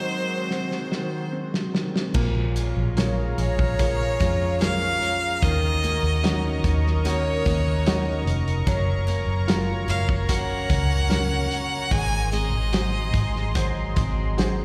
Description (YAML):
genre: pop ballad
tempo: 74 BPM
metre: 4/4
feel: straight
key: Bb minor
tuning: A4 = 440 Hz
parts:
  - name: clear violin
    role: melody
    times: 0.0-13.6 s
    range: C5 to Ab5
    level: -30 LUFS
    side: equal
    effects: slapback echo, digital delay
  - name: bright baby grand piano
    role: accompaniment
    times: 0.0-14.6 s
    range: Ab2 to Db5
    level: -35 LUFS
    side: equal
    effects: slapback echo
  - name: lush unison pad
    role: sustained chords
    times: 0.0-14.6 s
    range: Eb3 to Db6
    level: -34 LUFS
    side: equal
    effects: chorus
  - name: loose indie drum kit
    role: drums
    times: 0.5-14.6 s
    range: crash cymbal, hi-hat, kick drum, snare drum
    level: -28 LUFS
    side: equal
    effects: none
  - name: picked steel-string acoustic guitar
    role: arpeggios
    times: 2.1-14.6 s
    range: Ab2 to Ab4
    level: -36 LUFS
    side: equal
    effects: none
  - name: vintage muted fingered electric bass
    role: bass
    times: 2.1-14.6 s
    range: F1 to F2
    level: -26 LUFS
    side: equal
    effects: none
room: light reverb, studio reverb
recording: live gig heard through the venue's PA, recital hall reverb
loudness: -23 LUFS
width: mono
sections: 0.0-2.1 A section; 2.1-14.6 B section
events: drum fill 0.5-2.1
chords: 0.0 Ab7; 2.1 Bbm7; 5.4 Ebm7; 8.7 Gbmaj7; 11.9 Ab7